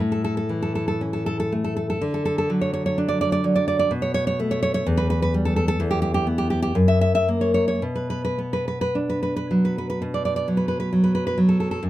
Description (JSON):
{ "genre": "romantic piece for solo classical guitar", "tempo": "53-68 BPM", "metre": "2/4", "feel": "rubato", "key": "D major, B minor from 5.8 s", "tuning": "A4 = 440 Hz", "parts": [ { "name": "nylon-string guitar", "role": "solo", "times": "0.0-11.9 s", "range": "E2 to E5", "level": "-20 LUFS", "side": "equal", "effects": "none" } ], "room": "light reverb", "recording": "close, detailed microphones", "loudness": "-20 LUFS", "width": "side -15 dB against mid", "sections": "0.0-10.0 A section; 10.0-11.9 B section", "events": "none", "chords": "0.0 A; 2.0 D; 3.9 Aadd9/B; 4.9 Em; 6.8 F#; 7.8 Bm; 10.0 B5" }